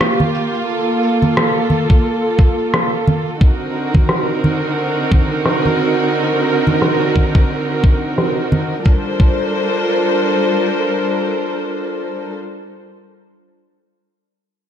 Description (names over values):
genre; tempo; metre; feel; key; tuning
sunset chillout; 88 BPM; 4/4; swing 57% on 16ths; G minor; A4 = 440 Hz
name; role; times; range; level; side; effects
dark studio string section; sustained chords; 0.0-12.3 s; D3 to C5; -17 LUFS; right 1 dB; none
electronic rim click and cabasa; drums; 0.0-8.8 s; none; -19 LUFS; equal; low-pass filter on perc, low-pass filter on snare, low-pass filter on room
congas; percussion; 0.2-8.7 s; none; -19 LUFS; right 1 dB; none
electronic kick drum; drums; 1.9-9.4 s; none; -12 LUFS; equal; none
room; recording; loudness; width
moderate concert hall reverb, RT60 2.1 s; dark, warm production; -14 LUFS; side -9 dB against mid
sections
0.0-8.9 A section; 8.9-11.6 B section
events
filter sweep on drum 0.0-8.9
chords
0.0 Gm9; 3.4 D7b9b13; 8.9 Gm11